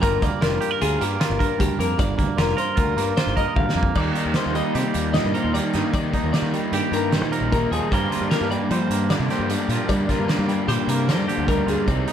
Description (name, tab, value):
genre	math rock and midwest emo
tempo	152 BPM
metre	5/4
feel	straight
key	unclear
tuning	A4 = 440 Hz
part	twangy electric guitar	accompaniment	0.0-12.1 s	G2 to C5	-26 LUFS	right 8 dB	spring reverb
part	twelve-string electric guitar	arpeggios	0.0-12.1 s	G4 to F5	-27 LUFS	left 5 dB	warbly pitch drift, analog delay
part	fuzz picked electric bass	bass	0.0-12.0 s	F1 to G3	-26 LUFS	equal	overdrive
part	loose indie drum kit	drums	0.0-12.1 s	crash cymbal, hi-hat, kick drum, snare drum, toms	-25 LUFS	equal	none
part	crunchy overdriven guitar	riff	4.0-12.1 s	G2 to Eb4	-25 LUFS	left 2 dB	none
room	light reverb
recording	dark, warm production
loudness	-19 LUFS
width	side -9 dB against mid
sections	0.0-4.0 A section; 4.0-12.1 B section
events	drum fill 3.6-4.0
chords	0.0 Gm7; 4.0 Ebmaj7; 7.9 Gm7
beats	| 0.02 0.41 0.81 1.20 1.59 | 1.99 2.38 2.77 3.17 3.56 | 3.96 4.35 4.75 5.14 5.54 | 5.93 6.33 6.72 7.12 7.52 | 7.91 8.31 8.71 9.10 9.50 | 9.89 10.29 10.69 11.08 11.48 | 11.88